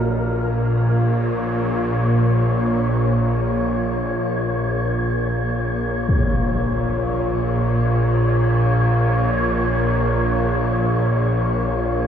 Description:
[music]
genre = dark ambient drone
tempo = free time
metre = none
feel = none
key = Bb minor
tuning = A4 = 440 Hz
[part]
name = bowed-like drone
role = drone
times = 0.0-12.1 s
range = Bb1 to Bb2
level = -18 LUFS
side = equal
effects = built-in reverb
[part]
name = wind-like tuned noise texture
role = texture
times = 0.0-12.1 s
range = Bb4 to Db5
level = -26 LUFS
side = left 2 dB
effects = built-in reverb, shimmer reverb
[part]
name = impact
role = percussion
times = 6.1-6.3 s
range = none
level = -23 LUFS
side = equal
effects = low-pass filter on sfx
[sound]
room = wet spring reverb, RT60 2.8 s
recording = none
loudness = -17 LUFS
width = side -8 dB against mid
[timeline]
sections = 0.1-12.1 A section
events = none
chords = 0.1 Bbm

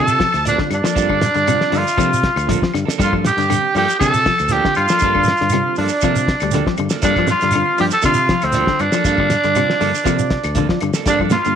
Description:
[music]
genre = afrobeat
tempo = 119 BPM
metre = 4/4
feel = straight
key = G minor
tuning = A4 = 439 Hz
[part]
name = breathy tenor saxophone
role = melody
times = 0.0-11.6 s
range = C4 to A4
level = -18 LUFS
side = left 1 dB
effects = slapback echo
[part]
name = brilliant trumpet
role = second line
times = 0.0-11.6 s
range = C5 to A5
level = -23 LUFS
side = right 9 dB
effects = none
[part]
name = bright reed electric piano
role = accompaniment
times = 0.0-11.4 s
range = D3 to G4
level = -27 LUFS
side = right 13 dB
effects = fast tremolo
[part]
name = semi-hollow electric guitar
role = arpeggios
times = 0.0-11.5 s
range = C3 to G3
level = -23 LUFS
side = left 12 dB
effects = none
[part]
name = clean electric guitar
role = stabs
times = 0.0-11.5 s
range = F3 to A4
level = -26 LUFS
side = right 11 dB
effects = none
[part]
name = fingered electric bass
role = bass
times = 0.0-11.6 s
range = D2 to C3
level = -22 LUFS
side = left 1 dB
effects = none
[part]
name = shekere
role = percussion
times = 0.1-11.6 s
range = none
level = -26 LUFS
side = right 5 dB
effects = none
[part]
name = cloth-damped thuddy drum kit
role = drums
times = 0.2-11.6 s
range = hi-hat, kick drum, snare drum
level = -22 LUFS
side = left 1 dB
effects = none
[part]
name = claves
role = percussion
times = 0.3-11.3 s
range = none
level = -31 LUFS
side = left 16 dB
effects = none
[part]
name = congas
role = percussion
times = 11.3-11.6 s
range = none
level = -20 LUFS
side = right 13 dB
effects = none
[sound]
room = light reverb, small room reverb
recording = 1960s-style stereo with parts hard left and right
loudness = -14 LUFS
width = side -8 dB against mid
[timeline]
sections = 0.0-11.6 A section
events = none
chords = 0.0 Gm9

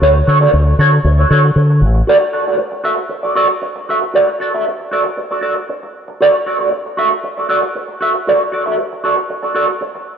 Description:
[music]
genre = disco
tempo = 116 BPM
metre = 4/4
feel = straight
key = unclear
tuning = A4 = 438 Hz
[part]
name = mellow electric guitar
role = accompaniment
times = 0.0-10.0 s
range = F#4 to E5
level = -14 LUFS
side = right 1 dB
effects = wah, spring reverb
[part]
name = fingered electric bass with an envelope filter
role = bass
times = 0.0-2.0 s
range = A1 to D3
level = -11 LUFS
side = equal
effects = none
[sound]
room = light reverb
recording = none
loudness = -12 LUFS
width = side -7 dB against mid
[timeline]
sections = 0.0-2.1 A section; 2.1-10.2 B section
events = none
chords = 0.0 Dmaj7; 2.1 F#m

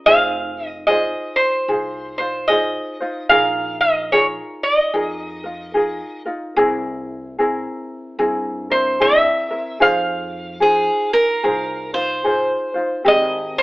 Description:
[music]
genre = Hawaiian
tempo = 74 BPM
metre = 4/4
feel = swing 62% on 8ths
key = F minor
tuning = A4 = 440 Hz
[part]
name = lap resonator guitar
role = melody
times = 0.0-13.6 s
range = C5 to F5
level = -16 LUFS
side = equal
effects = none
[part]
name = ukulele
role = accompaniment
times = 0.0-13.6 s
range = C4 to C5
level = -21 LUFS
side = equal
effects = none
[part]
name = upright bass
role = bass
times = 0.1-13.6 s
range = F1 to G2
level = -37 LUFS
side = equal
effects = none
[part]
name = picked steel-string acoustic guitar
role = second line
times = 10.6-13.0 s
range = Ab4 to C5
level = -18 LUFS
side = equal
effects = none
[sound]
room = light reverb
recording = band playing live in one room, telephone sound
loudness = -16 LUFS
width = side -20 dB against mid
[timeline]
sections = 0.1-13.1 A section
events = none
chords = 0.1 Fm7; 3.3 Bb7sus4; 6.6 C7b13; 9.8 Fm7; 13.1 Abmaj9

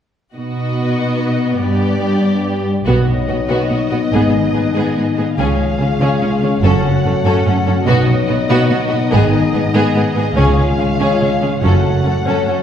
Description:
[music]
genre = cinematic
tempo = 144 BPM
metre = 3/4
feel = straight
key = B mixolydian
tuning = A4 = 440 Hz
[part]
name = rich symphonic violin section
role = second line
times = 0.3-12.6 s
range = F#4 to A4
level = -22 LUFS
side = left 2 dB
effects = none
[part]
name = rich studio viola section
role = accompaniment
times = 0.3-12.6 s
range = B3 to C#4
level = -22 LUFS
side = equal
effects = none
[part]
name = mellow French horn section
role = sustained chords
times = 0.3-12.6 s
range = G#3 to F#4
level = -20 LUFS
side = left 3 dB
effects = none
[part]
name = dark symphonic violin section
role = melody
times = 0.4-12.6 s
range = D5 to F#5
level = -25 LUFS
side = left 3 dB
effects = none
[part]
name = warm symphonic cello section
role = bass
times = 0.4-12.5 s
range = F#2 to C#3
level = -19 LUFS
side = right 2 dB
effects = none
[part]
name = concert harp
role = arpeggios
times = 2.9-12.6 s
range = F#2 to C#5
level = -21 LUFS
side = left 4 dB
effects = none
[part]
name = warm symphonic double bass section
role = bass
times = 2.9-11.8 s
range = F#1 to C#2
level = -20 LUFS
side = right 2 dB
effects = none
[part]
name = timpani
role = percussion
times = 6.6-7.2, 11.6-12.2 s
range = F#2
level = -20 LUFS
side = right 1 dB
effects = none
[sound]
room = wet scoring stage reverb, RT60 1.8 s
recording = heard from further back in the room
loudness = -13 LUFS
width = side -9 dB against mid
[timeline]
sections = 0.3-2.9 A section; 2.9-12.6 B section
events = build-up 2.9-12.6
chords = 0.3 B; 1.6 G; 2.9 B; 4.1 G#m; 5.4 C#; 6.6 F#m; 7.9 B; 9.1 G#m; 10.4 C#; 11.6 F#m

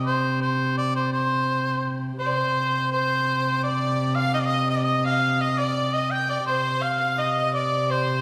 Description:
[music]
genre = medieval dance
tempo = 168 BPM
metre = 3/4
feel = straight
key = C minor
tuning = A4 = 439 Hz
[part]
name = warm viola da gamba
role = drone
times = 0.0-8.2 s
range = C3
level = -28 LUFS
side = equal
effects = none
[part]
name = bright shawm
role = melody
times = 0.1-8.2 s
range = C5 to G5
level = -26 LUFS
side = equal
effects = none
[part]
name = clear fiddle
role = second line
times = 2.2-8.2 s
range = C5 to G5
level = -32 LUFS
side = equal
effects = none
[sound]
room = wet recital hall reverb, RT60 1.7 s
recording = heard from further back in the room, lossy compression artefacts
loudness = -24 LUFS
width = mono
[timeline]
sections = 0.0-2.2 A section; 2.2-8.2 A section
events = none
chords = none

